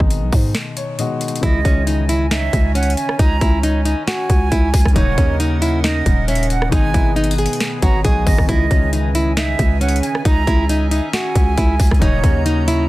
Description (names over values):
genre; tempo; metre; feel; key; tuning
hip hop, trap; 136 BPM; 4/4; half-time; unclear; A4 = 440 Hz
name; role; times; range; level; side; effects
dark concert grand piano; accompaniment; 0.0-12.9 s; Cb3 to Eb5; -26 LUFS; left 4 dB; none
growling 808-style bass; bass; 0.0-12.9 s; Eb1 to Ab2; -18 LUFS; equal; none
trap drum kit; drums; 0.0-12.8 s; hi-hat, kick drum, rim click, snare drum; -18 LUFS; equal; overdrive
nylon-string guitar; melody; 1.4-12.8 s; Db4 to Ab4; -22 LUFS; equal; digital delay
reedy concert flute; second line; 1.4-12.4 s; Db5 to Bb5; -24 LUFS; right 5 dB; digital delay
hollow soft pad; sustained chords; 1.4-12.9 s; Cb4 to Bb5; -30 LUFS; right 1 dB; chorus
room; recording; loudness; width
studio reverb; dense, heavily limited modern master; -14 LUFS; side -18 dB against mid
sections
0.0-1.4 A section; 1.4-12.9 B section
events
break 0.5-1.4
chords
0.0 Abm; 1.4 Dbmadd9; 5.0 Ebm7; 6.7 Abm; 8.5 Dbmadd9; 12.0 Ebm7